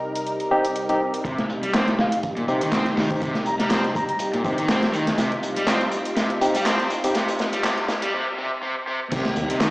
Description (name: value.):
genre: breakbeat, breaks.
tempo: 122 BPM.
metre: 4/4.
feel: swing 55% on 16ths.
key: C minor.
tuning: A4 = 440 Hz.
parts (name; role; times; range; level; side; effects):
lush unison pad; sustained chords; 0.0-9.7 s; C2 to Bb4; -29 LUFS; equal; chorus, sidechain pumping.
house drum kit; drums; 0.2-9.7 s; handclaps, hi-hat; -30 LUFS; equal; none.
barky tine electric piano; stabs; 0.5-7.1 s; C4 to G4; -25 LUFS; equal; low-pass filter, digital delay.
crunchy breakbeat drum kit; drums; 1.2-9.7 s; crash cymbal, hi-hat, kick drum, snare drum; -25 LUFS; equal; low-pass filter on kick, low-pass filter on hats, low-pass filter on cymbals, low-pass filter on snare, low-pass filter on room.
overdriven semi-hollow guitar; riff; 1.3-9.7 s; Bb2 to C4; -25 LUFS; equal; low-pass filter, digital delay.
mellow wooden flute; melody; 2.0-4.2 s; F5 to Bb5; -28 LUFS; equal; AM radio sound, low-pass filter, digital delay.
dark detuned saw bass; bass; 9.1-9.5 s; C2 to Eb2; -27 LUFS; equal; none.
room: wet lush hall reverb, RT60 1.9 s, small room ambience.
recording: played on a big sound system in a bare room, large studio reverb, vinyl crackle, high-pass filter, small speaker sound.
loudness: -20 LUFS.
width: side -21 dB against mid.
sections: 0.0-1.3 A section; 1.3-9.1 B section.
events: filter sweep on tine electric piano 0.0-1.3; build-up 1.3-9.1; filter sweep on drum 1.3-9.1; filter sweep on analog synth pad 1.3-9.1; filter sweep 1.3-9.1; drum fill 5.2-8.1; break 8.1-9.1.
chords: 0.0 Cm.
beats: 0.27 0.76 | 1.25 1.74 2.23 2.73 | 3.22 3.71 4.20 4.69 | 5.18 5.68 6.17 6.66 | 7.15 7.64 8.14 8.63 | 9.12 9.61.